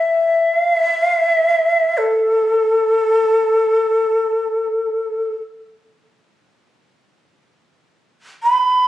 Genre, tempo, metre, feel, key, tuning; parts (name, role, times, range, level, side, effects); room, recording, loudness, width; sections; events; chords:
japanese traditional, Japanese chamber music; free time; A4 = 444 Hz
breathy bright shakuhachi; solo; 0.0-5.3, 8.4-8.9 s; A4 to B5; -14 LUFS; equal
light reverb; recorded on a phone in the room, studio ambience, compression; -14 LUFS; side -13 dB against mid
0.0-7.0 A section; 7.0-8.9 A section